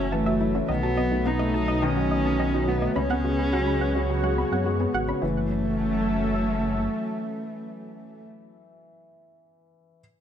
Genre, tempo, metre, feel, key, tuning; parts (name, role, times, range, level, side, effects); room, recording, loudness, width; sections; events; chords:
piano and strings electronica; 106 BPM; 4/4; straight; F# dorian; A4 = 440 Hz
dark cello; melody; 0.0-8.2 s; A3 to D#4; -28 LUFS; equal; tape echo
lush unison pad; sustained chords; 0.0-8.2 s; B2 to E5; -32 LUFS; equal; chorus
soft round pluck; arpeggios; 0.0-5.5 s; D#4 to B5; -33 LUFS; right 3 dB; chorus, vintage 12-bit sampler grit, tape echo
felt-muted upright piano; riff; 0.0-10.0 s; D#3 to F#4; -28 LUFS; left 2 dB; tape echo
dark detuned saw bass; bass; 0.0-6.9 s; F#1 to F#2; -28 LUFS; equal
light reverb, studio reverb; -22 LUFS; side -9 dB against mid
0.0-5.2 A section; 5.2-7.5 B section
drop 0.0-5.2
0.0 F#m7; 0.7 B7; 3.0 C#7sus4; 5.2 F#m7